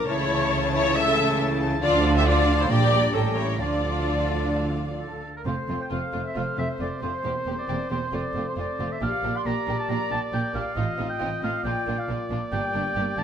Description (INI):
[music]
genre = classical, dramatic, fast romantic movement for symphony orchestra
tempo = 136 BPM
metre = 4/4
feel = rubato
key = D minor, F major from 5.5 s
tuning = A4 = 440 Hz
[part]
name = warm symphonic violin section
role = melody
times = 0.0-13.2 s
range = F4 to A5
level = -37 LUFS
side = left 5 dB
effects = none
[part]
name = clear clarinet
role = second line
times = 0.0-5.2 s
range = E4 to G4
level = -35 LUFS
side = left 1 dB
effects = none
[part]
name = small flute group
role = second line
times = 0.0-13.2 s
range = A4 to C6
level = -34 LUFS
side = left 2 dB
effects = none
[part]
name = warm oboe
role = second line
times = 0.0-13.2 s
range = A4 to C6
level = -32 LUFS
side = right 1 dB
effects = none
[part]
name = rich symphonic viola section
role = accompaniment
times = 0.0-13.2 s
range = A3 to E5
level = -28 LUFS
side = left 1 dB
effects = none
[part]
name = dark French horn section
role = sustained chords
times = 0.0-13.2 s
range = A3 to Bb4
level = -34 LUFS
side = left 4 dB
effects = none
[part]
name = mellow trombone section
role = sustained chords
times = 0.0-5.2 s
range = G2 to G3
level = -34 LUFS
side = right 3 dB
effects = none
[part]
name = clear symphonic cello section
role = bass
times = 0.0-13.2 s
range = E2 to D3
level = -30 LUFS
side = right 2 dB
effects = none
[part]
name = clear symphonic double bass section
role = bass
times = 0.0-13.2 s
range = E1 to D2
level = -29 LUFS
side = right 3 dB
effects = none
[part]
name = warm symphonic violin section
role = second line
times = 0.1-13.2 s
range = C4 to A4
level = -34 LUFS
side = left 3 dB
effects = none
[part]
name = clear trumpet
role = stabs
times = 5.5-13.2 s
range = C5 to Eb5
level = -34 LUFS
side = right 2 dB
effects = none
[sound]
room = light reverb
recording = close, detailed microphones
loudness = -22 LUFS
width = side -8 dB against mid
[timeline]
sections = 0.0-5.5 A section; 5.5-13.2 B section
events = none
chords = 0.1 A/C#; 1.8 Dm; 2.7 Gm/Bb; 3.1 A7b9; 3.6 Dm; 5.5 F; 7.2 C7/E; 8.1 F; 9.0 Bb6; 10.8 F7/A; 11.6 Bb; 12.5 Gm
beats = | 0.08 0.52 0.96 1.40 | 1.83 2.27 2.70 3.14 | 3.60 4.07 4.53 4.99 | 5.46 5.91 6.36 6.80 | 7.24 7.69 8.13 8.57 | 9.01 9.45 9.89 10.33 | 10.76 11.20 11.64 12.08 | 12.52 12.96